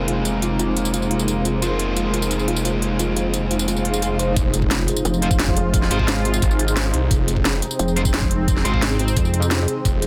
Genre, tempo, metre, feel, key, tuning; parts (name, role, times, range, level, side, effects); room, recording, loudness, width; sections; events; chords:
dark technical drum and bass; 175 BPM; 4/4; straight; F minor; A4 = 441 Hz
sweeping resonant pad; sustained chords; 0.0-10.1 s; C3 to F4; -29 LUFS; equal; chorus, sidechain pumping
fuzz guitar; stabs; 0.0-8.8 s; Ab3 to C5; -29 LUFS; equal; distortion, low-pass filter, digital delay
snarling distorted saw bass; bass; 0.0-7.6, 9.9-10.1 s; F1 to C2; -26 LUFS; equal; distortion, overdrive
granular cloud pad; texture; 0.0-10.1 s; Eb4 to C5; -30 LUFS; equal; built-in reverb, sidechain pumping
soft round pluck; arpeggios; 0.1-4.2 s; F4 to C5; -32 LUFS; equal; analog chorus, sidechain pumping, digital delay
drum and bass drum kit; drums; 0.1-10.1 s; hi-hat, snare drum, tambourine; -27 LUFS; equal
swell and impact; sound effects; 3.8-5.7 s; -32 LUFS; equal
electronic kick drum; drums; 4.4-9.9 s; -23 LUFS; equal
pulsing pluck wobble bass; bass; 5.1-9.7 s; F1 to F2; -23 LUFS; equal; chorus
light reverb; -20 LUFS; mono
0.0-4.4 A section; 4.4-10.1 B section
filter sweep on synth pluck 0.0-4.4; swell 3.8-4.4; drop 4.4-10.1; impact 4.4-5.7
0.0 Fm